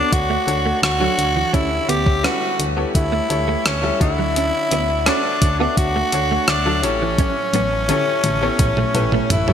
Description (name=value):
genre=1980s-style pop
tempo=85 BPM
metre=4/4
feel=straight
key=unclear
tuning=A4 = 441 Hz
part: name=growling tenor saxophone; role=melody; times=0.0-9.5 s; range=C#4 to G4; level=-20 LUFS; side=equal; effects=ping-pong delay
part: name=bright concert grand piano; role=accompaniment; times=0.0-9.5 s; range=A2 to E5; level=-25 LUFS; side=left 5 dB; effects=none
part: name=direct-recorded clean electric guitar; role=riff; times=0.0-9.5 s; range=E3 to C#4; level=-26 LUFS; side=right 4 dB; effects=ensemble chorus, ping-pong delay
part: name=solid FM bass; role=bass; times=0.0-9.5 s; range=A1 to D2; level=-24 LUFS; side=equal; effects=none
part: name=clean 12-bit digital drum machine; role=drums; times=0.1-9.5 s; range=hi-hat, kick drum, rim click, toms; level=-20 LUFS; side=equal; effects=gated reverb
room=moderate lush hall reverb, RT60 2.6 s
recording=bright 1980s-style digital production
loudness=-16 LUFS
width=side -8 dB against mid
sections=0.0-9.5 A section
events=drum fill 7.2-9.5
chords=0.0 Bm7/D (rootless); 1.5 A7/D; 4.0 Dmaj7; 6.8 A7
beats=0.12 0.83 | 1.54 2.24 2.95 3.65 | 4.36 5.07 5.77 6.48 | 7.18 7.89 8.60 9.30